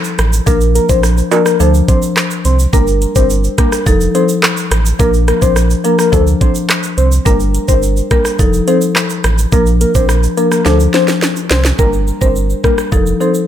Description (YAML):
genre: dancehall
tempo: 106 BPM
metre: 4/4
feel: straight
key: G minor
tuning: A4 = 440 Hz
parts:
  - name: island pop drum kit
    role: drums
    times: 0.0-13.5 s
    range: handclaps, hi-hat, kick drum, rim click, shaker, snare drum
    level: -15 LUFS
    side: right 1 dB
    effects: none
  - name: tube shaker and timbales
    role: percussion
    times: 0.0-11.8 s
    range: none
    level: -24 LUFS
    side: right 9 dB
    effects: none
  - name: sub bass with octave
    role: bass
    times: 0.2-13.1 s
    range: F1 to D2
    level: -13 LUFS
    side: right 1 dB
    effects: none
  - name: soft octave-layered synth lead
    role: melody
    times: 0.5-13.3 s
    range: A4 to C5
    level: -17 LUFS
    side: left 3 dB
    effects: chorus, phaser, digital delay
  - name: marimba with medium mallets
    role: accompaniment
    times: 0.5-13.4 s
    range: F3 to C5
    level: -16 LUFS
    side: left 1 dB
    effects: none
room: digital ambience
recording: none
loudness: -10 LUFS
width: side -10 dB against mid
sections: 0.0-11.8 A section; 11.8-13.5 B section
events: drum fill 10.7-11.8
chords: 0.5 Bb; 1.6 Dm7; 2.7 Gm; 3.9 F7; 5.0 Bb; 6.1 Dm7; 7.3 Gm; 8.4 F7; 9.5 Bb; 10.7 Dm7; 11.8 Gm; 12.9 F7